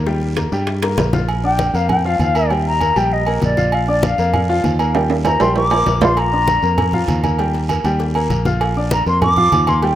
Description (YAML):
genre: latin, salsa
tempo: 197 BPM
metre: 4/4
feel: straight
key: Bb major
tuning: A4 = 441 Hz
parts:
  - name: bright upright piano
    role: accompaniment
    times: 0.0-10.0 s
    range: F3 to F6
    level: -22 LUFS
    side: left 2 dB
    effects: none
  - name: fingered electric bass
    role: bass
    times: 0.0-10.0 s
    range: Bb1 to G2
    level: -19 LUFS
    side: equal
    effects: none
  - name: bongos and cowbell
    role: percussion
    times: 0.1-1.2, 6.2-10.0 s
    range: none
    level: -29 LUFS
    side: left 4 dB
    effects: none
  - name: congas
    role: percussion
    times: 0.1-10.0 s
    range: none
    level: -23 LUFS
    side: left 1 dB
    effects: none
  - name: guiro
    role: percussion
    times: 0.1-10.0 s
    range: none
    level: -36 LUFS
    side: right 4 dB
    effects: none
  - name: timbales and agogo bells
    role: percussion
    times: 0.4-10.0 s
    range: none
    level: -22 LUFS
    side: right 6 dB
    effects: none
  - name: silver concert flute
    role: melody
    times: 1.5-10.0 s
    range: D5 to D6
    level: -18 LUFS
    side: left 1 dB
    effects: tape echo
room: moderate plate reverb, RT60 3.0 s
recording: rough home demo mix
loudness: -14 LUFS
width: side -12 dB against mid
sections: 0.0-1.3 A section; 1.3-10.0 B section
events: drum fill 0.8-1.3, 4.9-6.2; flute solo 1.3-10.0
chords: 0.1 Eb; 1.3 Bb; 2.5 Eb; 3.7 Bb; 4.9 Eb; 6.2 Bb; 7.4 Eb; 8.6 Bb